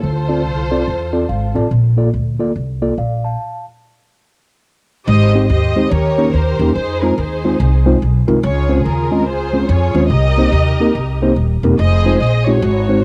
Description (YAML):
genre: uptempo gospel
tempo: 143 BPM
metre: 4/4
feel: swing 63% on 8ths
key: unclear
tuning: A4 = 440 Hz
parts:
  - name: muted studio string section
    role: melody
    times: 0.0-1.6, 5.1-13.0 s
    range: Eb4 to Eb5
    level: -22 LUFS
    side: equal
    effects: tape echo
  - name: mellow tine electric piano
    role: accompaniment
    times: 0.0-13.0 s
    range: Ab2 to A5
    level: -19 LUFS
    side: equal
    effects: cassette tape
  - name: upright bass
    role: bass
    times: 0.0-13.0 s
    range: Eb1 to F2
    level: -18 LUFS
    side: equal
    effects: none
room: light reverb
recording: home recording on cassette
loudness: -15 LUFS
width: mono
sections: 0.0-5.1 A section; 5.1-13.0 B section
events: tine electric piano fill 0.9-1.7; stop 3.4-5.1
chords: 0.0 Dm7; 1.7 Bbmaj7; 3.4 N.C.; 5.1 Abmaj7; 5.9 Eb7; 6.8 Fm7; 8.4 Dbmaj7; 10.1 Cm7; 11.8 Fm7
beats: | 0.03 0.45 0.87 1.29 | 1.71 2.13 2.56 2.98 | 3.40 3.82 4.24 4.66 | 5.08 5.50 5.92 6.34 | 6.75 7.17 7.59 8.01 | 8.43 8.85 9.27 9.69 | 10.11 10.53 10.95 11.37 | 11.79 12.21 12.63